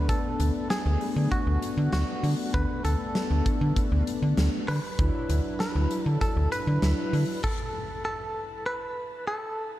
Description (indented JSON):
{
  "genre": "synth-pop",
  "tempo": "98 BPM",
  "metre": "4/4",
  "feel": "straight",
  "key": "unclear",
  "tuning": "A4 = 440 Hz",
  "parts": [
    { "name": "direct-recorded clean electric guitar", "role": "melody", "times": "0.0-9.7 s", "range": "F#4 to B4", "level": "-33 LUFS", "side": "equal", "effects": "tremolo, shimmer reverb, dub echo" },
    { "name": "mellow synth brass", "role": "accompaniment", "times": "0.0-7.4 s", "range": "F#3 to E4", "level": "-32 LUFS", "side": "left 2 dB", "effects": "chorus, shimmer reverb" },
    { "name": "slap-like FM bass", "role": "bass", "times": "0.0-7.2 s", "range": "D2 to D3", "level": "-24 LUFS", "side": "equal", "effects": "none" },
    { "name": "huge arena drum kit", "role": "drums", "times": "0.1-7.6 s", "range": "crash cymbal, hi-hat, kick drum, snare drum", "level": "-30 LUFS", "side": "equal", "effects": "none" }
  ],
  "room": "moderate spring reverb, RT60 1.6 s, small room ambience",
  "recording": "echo-heavy mix",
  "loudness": "-24 LUFS",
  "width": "side -14 dB against mid",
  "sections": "0.0-9.8 A section",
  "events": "stop 7.4-9.8",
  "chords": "0.0 Bm7/D; 5.0 Dadd9"
}